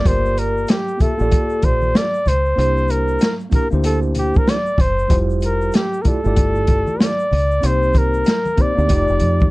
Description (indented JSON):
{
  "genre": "hip hop, jazz-hop",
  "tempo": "95 BPM",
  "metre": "4/4",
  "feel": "swing 63% on 16ths",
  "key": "G dorian",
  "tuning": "A4 = 439 Hz",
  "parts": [
    { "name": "mellow flugelhorn", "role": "melody", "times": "0.0-9.5 s", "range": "G4 to D5", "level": "-20 LUFS", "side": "equal", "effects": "none" },
    { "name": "tine electric piano", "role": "accompaniment", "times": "0.0-9.5 s", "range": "G3 to E5", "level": "-23 LUFS", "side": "equal", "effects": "slow stereo tremolo" },
    { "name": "deep dub fingered electric bass", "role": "bass", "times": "0.0-9.5 s", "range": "F1 to F2", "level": "-19 LUFS", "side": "equal", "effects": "none" },
    { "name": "open jazz drum kit", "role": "drums", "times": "0.1-9.5 s", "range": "hi-hat, kick drum, snare drum", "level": "-17 LUFS", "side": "equal", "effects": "none" },
    { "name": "tube shaker and congas", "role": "percussion", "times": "0.1-9.5 s", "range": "none", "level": "-32 LUFS", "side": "left 1 dB", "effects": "none" }
  ],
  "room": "light reverb",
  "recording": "worn, warbling old tape, cassette tape, warbly pitch drift",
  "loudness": "-15 LUFS",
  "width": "side -21 dB against mid",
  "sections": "0.1-9.5 A section",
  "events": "none",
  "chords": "0.1 Gm9; 2.6 C9; 5.1 Fmaj9; 7.6 Cm7; 8.9 F13"
}